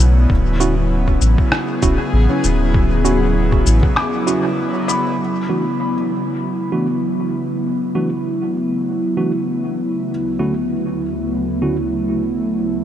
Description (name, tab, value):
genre	ambient dub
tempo	98 BPM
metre	4/4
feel	swing 55% on 16ths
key	E mixolydian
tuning	A4 = 440 Hz
part	airy breathy pad	sustained chords	0.0-12.8 s	D2 to G#4	-19 LUFS	equal	chorus
part	felt-muted upright piano	arpeggios	0.0-10.1 s	C#4 to D6	-26 LUFS	left 3 dB	analog delay
part	soft dub sub bass	bass	0.0-3.8 s	D1 to B1	-15 LUFS	equal	none
part	lo-fi sampler-style drum kit	drums	0.0-5.0 s	rim click, shaker, toms	-25 LUFS	left 1 dB	dub echo
part	electronic kick drum	drums	0.3-3.9 s	none	-17 LUFS	equal	none
part	mellow tine electric piano	stabs	0.6-11.8 s	D3 to F#4	-25 LUFS	right 2 dB	medium stereo tremolo, dub echo
room	moderate huge ambient reverb, RT60 9.2 s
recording	dreamy mix soaked in reverb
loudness	-16 LUFS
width	side -11 dB against mid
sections	0.0-5.2 A section; 5.2-12.8 B section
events	break 4.0-5.2; filter sweep on analog synth pad 5.2-12.8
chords	0.0 Dmaj9; 5.2 Esus4; 10.1 Dmaj9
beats	| 0.30 0.91 1.52 2.14 | 2.75 3.36 3.97 4.59 | 5.20 5.81 6.42 7.04 | 7.65 8.26 8.87 9.48 | 10.10 10.71 11.32 11.93 | 12.54